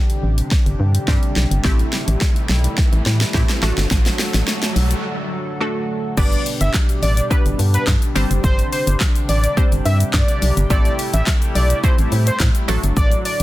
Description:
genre	dance-pop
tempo	106 BPM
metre	4/4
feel	straight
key	G major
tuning	A4 = 437 Hz
part	glassy wavetable pluck	accompaniment	0.0-13.4 s	F#3 to C5	-26 LUFS	equal	chorus, sidechain pumping
part	chorused pulse-width pad	sustained chords	0.0-13.4 s	A2 to A4	-27 LUFS	equal	sidechain pumping
part	riser	sound effects	0.2-5.0 s	none	-30 LUFS	right 2 dB	none
part	pop drum kit	drums	0.1-13.4 s	crash cymbal, handclaps, hi-hat, kick drum, shaker, snare drum	-18 LUFS	equal	none
part	organ-like FM bass	bass	0.2-13.4 s	F#1 to A2	-17 LUFS	equal	sidechain pumping
part	fat analog lead	melody	6.2-13.4 s	B4 to E5	-24 LUFS	equal	sidechain pumping, dub echo
room	digital ambience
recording	dense, heavily limited modern master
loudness	-15 LUFS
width	side -16 dB against mid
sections	0.0-6.2 A section; 6.2-13.4 B section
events	build-up 0.0-6.2; drum fill 0.0-5.0; riser 0.2-6.2; break 5.0-6.2; drop 6.2-13.4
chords	0.0 Csus2; 1.6 Am7; 3.6 D; 6.2 G; 8.2 Csus2; 10.7 Am7; 12.7 D

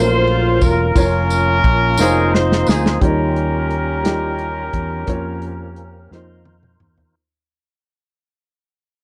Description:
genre	slow gospel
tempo	58 BPM (dotted quarters)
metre	6/8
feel	straight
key	unclear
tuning	A4 = 439 Hz
part	dark horn section	melody	0.0-6.5 s	C4 to C5	-21 LUFS	equal	none
part	dark baby grand piano	accompaniment	0.0-7.2 s	Eb3 to F5	-25 LUFS	equal	none
part	percussive tonewheel organ	sustained chords	0.0-7.2 s	Eb3 to C5	-30 LUFS	equal	none
part	fingered electric bass	bass	0.0-7.1 s	E1 to F2	-23 LUFS	equal	none
part	warm soul drum kit	drums	0.3-7.1 s	hi-hat, kick drum, ride cymbal, snare drum, toms	-20 LUFS	equal	none
part	tambourine	percussion	0.6-3.0 s	none	-31 LUFS	equal	none
room	little or no reverb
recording	none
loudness	-17 LUFS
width	mono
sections	0.0-3.0 A section; 3.0-7.2 B section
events	drum fill 2.0-3.0, 6.1-7.2; fade-out 3.0-7.2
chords	0.0 Gbmaj7; 1.0 Bbm/F; 2.0 F7sus4; 3.0 Eb9; 5.1 Bbm/F; 6.1 F7sus4

